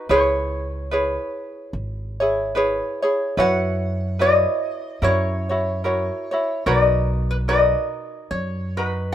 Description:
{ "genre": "Hawaiian", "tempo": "73 BPM", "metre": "4/4", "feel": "swing 57% on 8ths", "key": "B major", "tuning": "A4 = 440 Hz", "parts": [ { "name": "lap resonator guitar", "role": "melody", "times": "0.0-9.1 s", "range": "B4 to F#5", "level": "-22 LUFS", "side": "left 2 dB", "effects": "none" }, { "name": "ukulele", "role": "accompaniment", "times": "0.0-9.1 s", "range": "D#4 to C#5", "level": "-22 LUFS", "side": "equal", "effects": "none" }, { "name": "upright bass", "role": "bass", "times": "0.1-9.1 s", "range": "G#1 to F#2", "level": "-25 LUFS", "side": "right 1 dB", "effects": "none" } ], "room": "light reverb, small room reverb", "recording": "rough home demo mix", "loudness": "-19 LUFS", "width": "side -11 dB against mid", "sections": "0.0-9.1 A section", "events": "none", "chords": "0.1 C#m7; 3.4 F#7sus4; 5.0 F#7; 6.7 Bmaj7" }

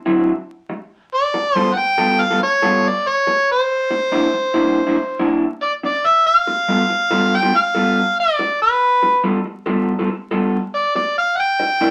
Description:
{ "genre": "blues", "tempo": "94 BPM", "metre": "4/4", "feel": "swing 67% on 8ths", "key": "G mixolydian", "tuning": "A4 = 440 Hz", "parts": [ { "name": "electric guitar through a small old amp", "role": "riff", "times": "0.1-11.9 s", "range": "C3 to D5", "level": "-21 LUFS", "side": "equal", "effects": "none" }, { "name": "overdriven harmonica", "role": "melody", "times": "1.1-11.9 s", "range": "B4 to G5", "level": "-18 LUFS", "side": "equal", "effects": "none" } ], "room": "wet studio reverb, RT60 0.5 s", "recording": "vinyl crackle", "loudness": "-17 LUFS", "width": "mono", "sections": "0.0-1.1 A section; 1.1-11.9 B section", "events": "harmonica solo 0.0-1.1", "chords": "0.0 D9; 1.1 G9; 3.7 C9; 6.3 G9; 11.4 C9" }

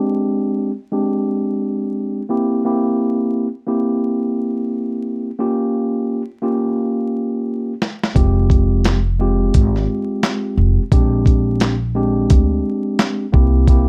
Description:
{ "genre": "hip hop, boom-bap hip-hop", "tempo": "87 BPM", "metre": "4/4", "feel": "swing 63% on 16ths", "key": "F harmonic minor", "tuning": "A4 = 439 Hz", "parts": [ { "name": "mellow tine electric piano", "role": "accompaniment", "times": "0.0-13.9 s", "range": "Ab3 to G4", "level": "-21 LUFS", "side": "equal", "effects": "cassette tape, high-pass filter, low-pass filter" }, { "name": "dusty soul sampler-style drum kit", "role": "drums", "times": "7.8-13.9 s", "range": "handclaps, hi-hat, kick drum, snare drum", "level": "-17 LUFS", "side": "equal", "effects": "none" }, { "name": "upright bass", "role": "bass", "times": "8.2-13.9 s", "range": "F1 to D2", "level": "-19 LUFS", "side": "equal", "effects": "none" } ], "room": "moderate studio reverb, RT60 0.6 s", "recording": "dark, warm production, vinyl crackle", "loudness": "-18 LUFS", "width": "mono", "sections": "0.0-8.2 A section; 8.2-13.9 B section", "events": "filter sweep on tine electric piano 0.0-8.2; drum fill 7.5-8.2", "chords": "0.0 Abmaj7#11; 2.3 C7; 5.4 Gm7b5; 8.2 Fmadd9; 10.9 Bb13; 13.3 C7" }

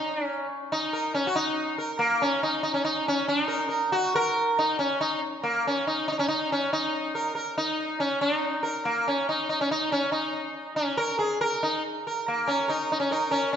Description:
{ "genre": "indian classical", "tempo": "140 BPM", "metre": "4/4", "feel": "straight", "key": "unclear", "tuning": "A4 = 438 Hz", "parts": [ { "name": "sitar", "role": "solo", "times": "0.0-13.6 s", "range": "Bb3 to Bb4", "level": "-24 LUFS", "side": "equal", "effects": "none" } ], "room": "moderate scoring stage reverb, RT60 1.6 s", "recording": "recorded in a church or concert hall, nothing above 7.8 kHz", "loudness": "-24 LUFS", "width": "side -8 dB against mid", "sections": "0.0-13.5 A section", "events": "none", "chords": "none" }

